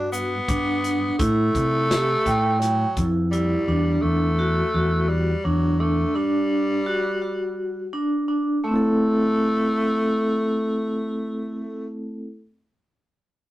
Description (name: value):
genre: progressive instrumental, band music in an uneven meter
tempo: 169 BPM (eighths)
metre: 7/8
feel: straight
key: A dorian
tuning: A4 = 439 Hz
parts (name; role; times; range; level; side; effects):
- raspy tenor saxophone; melody; 0.0-11.9 s; F#3 to B3; -25 LUFS; equal; none
- vibraphone with medium mallets; arpeggios; 0.0-12.3 s; A3 to G5; -23 LUFS; right 1 dB; none
- mellow fretless electric bass; bass; 0.0-6.0 s; E2 to C3; -23 LUFS; equal; none
- warm soul drum kit; drums; 0.1-3.5 s; hi-hat, kick drum, snare drum; -27 LUFS; equal; none
- egg shaker; percussion; 0.1-0.5 s; none; -38 LUFS; left 4 dB; none
room: wet studio reverb, RT60 0.6 s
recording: rough rehearsal-room recording, tube saturation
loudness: -20 LUFS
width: side -15 dB against mid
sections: 0.0-8.6 A section; 8.6-11.1 B section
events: none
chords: 0.0 Gmaj7; 1.2 Am7; 3.7 Em9; 8.6 Am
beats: 0.13 0.48 0.84 | 1.19 1.55 1.90 2.26 2.61 2.97 3.32 | 3.68 4.03 4.38 4.74 5.09 5.45 5.80 | 6.16 6.51 6.87 7.22 7.57 7.93 8.28 | 8.64 8.99 9.34 9.70 10.05 10.41 10.76